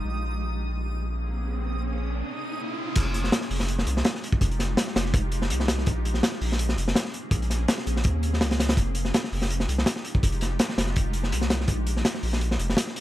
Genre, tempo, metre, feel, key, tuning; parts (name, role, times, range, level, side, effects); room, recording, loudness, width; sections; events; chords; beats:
drum and bass, jungle; 165 BPM; 4/4; swing 54% on 16ths; F minor; A4 = 439 Hz
granular cloud pad; sustained chords; 0.0-13.0 s; Ab3 to Ab4; -34 LUFS; equal; built-in reverb, vintage 12-bit sampler grit
saturated sub bass; bass; 0.0-12.8 s; F1 to Eb2; -27 LUFS; equal; tube saturation
riser; sound effects; 1.3-3.0 s; -38 LUFS; right 1 dB
backwards swelling texture; texture; 0.0-2.2 s; Eb6; -40 LUFS; right 1 dB; built-in reverb
crunchy breakbeat drum kit; drums; 3.0-13.0 s; crash cymbal, hi-hat, kick drum, snare drum; -24 LUFS; equal
studio ambience; -23 LUFS; side -14 dB against mid
0.0-3.0 A section; 3.0-13.0 B section
riser 1.3-3.0; break 2.2-3.0; drop 3.0-13.0
0.0 Bbm9; 3.0 Fm9; 5.9 Bbm9; 8.8 Fm9; 11.7 Bbm9
| 0.05 0.41 0.78 1.14 | 1.50 1.87 2.23 2.59 | 2.96 3.32 3.69 4.05 | 4.41 4.78 5.14 5.50 | 5.87 6.23 6.59 6.96 | 7.32 7.68 8.05 8.41 | 8.78 9.14 9.50 9.87 | 10.23 10.59 10.96 11.32 | 11.69 12.05 12.41 12.78